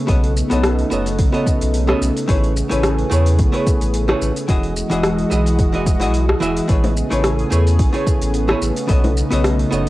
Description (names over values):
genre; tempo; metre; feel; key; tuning
sunset chillout; 109 BPM; 4/4; swing 55% on 16ths; A lydian; A4 = 440 Hz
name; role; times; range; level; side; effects
lush unison pad; sustained chords; 0.0-9.9 s; C#3 to D#5; -22 LUFS; equal; chorus, cassette tape
archtop guitar, miked and amplified; accompaniment; 0.1-9.9 s; E3 to E5; -22 LUFS; equal; auto-pan, cassette tape, analog delay
warm sub bass; bass; 0.1-9.9 s; E1 to E2; -19 LUFS; equal; tube saturation
deep house drum kit; drums; 0.1-9.9 s; hi-hat, rim click, shaker; -24 LUFS; equal; overdrive, studio reverb, cassette tape
electronic kick drum; drums; 0.1-9.0 s; none; -17 LUFS; equal; overdrive, studio reverb, cassette tape
bongos; percussion; 6.8-9.1 s; none; -24 LUFS; left 2 dB; none
room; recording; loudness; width
light reverb, digital ambience; home recording on cassette; -15 LUFS; side -17 dB against mid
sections
0.0-9.9 A section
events
none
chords
0.1 B9; 2.3 Amaj9; 4.5 Emaj9; 6.7 Amaj9; 8.9 B9